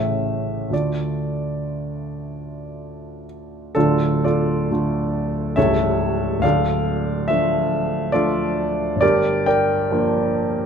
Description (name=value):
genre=classical, romantic character piece for solo piano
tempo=57-74 BPM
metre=3/4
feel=rubato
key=D minor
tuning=A4 = 440 Hz
part: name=warm upright piano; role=solo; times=0.0-10.7 s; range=C#1 to G5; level=-19 LUFS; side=equal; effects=none
room=moderate large studio reverb, RT60 1.1 s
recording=none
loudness=-18 LUFS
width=side -7 dB against mid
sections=0.0-3.7 A section; 3.7-10.7 A section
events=none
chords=0.0 A; 0.7 Dm; 5.6 A7/C#; 6.4 Dm; 9.0 Gm7